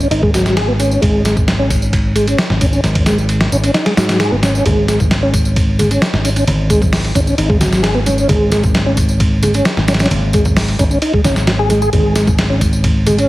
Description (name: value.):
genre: breakbeat, breaks.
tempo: 132 BPM.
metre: 4/4.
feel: straight.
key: unclear.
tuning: A4 = 441 Hz.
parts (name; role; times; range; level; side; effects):
mellow tonewheel organ; riff; 0.0-13.3 s; F#3 to G#4; -17 LUFS; equal; chorus vibrato, slow rotary speaker, tube saturation, vintage 12-bit sampler grit, low-pass filter, dub echo.
picked electric bass; bass; 0.0-13.2 s; G#1 to G#2; -16 LUFS; equal; tube saturation.
tambourine; drums; 0.0-13.3 s; none; -28 LUFS; equal; overdrive.
dusty soul sampler-style drum kit; drums; 0.1-13.3 s; hi-hat, kick drum, ride cymbal, snare drum; -16 LUFS; equal; none.
congas; percussion; 4.7-13.2 s; none; -22 LUFS; equal; none.
room: light reverb.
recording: heavily compressed radio sound, vinyl crackle.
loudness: -11 LUFS.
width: side -17 dB against mid.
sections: 0.0-13.3 A section.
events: none.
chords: none.